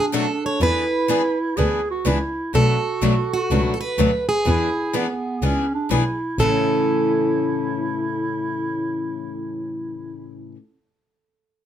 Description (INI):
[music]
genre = acoustic string swing (jazz manouche)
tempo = 124 BPM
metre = 4/4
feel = swing 66% on 8ths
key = A major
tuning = A4 = 439 Hz
[part]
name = picked plugged-in steel-string acoustic guitar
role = melody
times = 0.0-10.5 s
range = F#4 to C#5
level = -23 LUFS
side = right 3 dB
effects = none
[part]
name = warm clarinet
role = second line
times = 0.0-10.5 s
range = B3 to G#4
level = -26 LUFS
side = right 2 dB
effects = none
[part]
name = picked steel-string acoustic guitar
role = accompaniment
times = 0.1-10.6 s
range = A2 to G#4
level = -25 LUFS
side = left 8 dB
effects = none
[part]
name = picked steel-string acoustic guitar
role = accompaniment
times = 0.1-10.6 s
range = A2 to B4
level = -29 LUFS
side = right 4 dB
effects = none
[part]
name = muted double bass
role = bass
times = 0.6-6.5 s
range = A1 to E2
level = -21 LUFS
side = equal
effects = none
[sound]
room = moderate studio reverb, RT60 0.6 s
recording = none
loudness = -19 LUFS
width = side -10 dB against mid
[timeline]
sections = 0.0-6.4 A section; 6.4-10.3 B section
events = none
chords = 0.0 Bm7; 0.6 E7; 2.5 Bm7; 4.5 E7; 6.4 A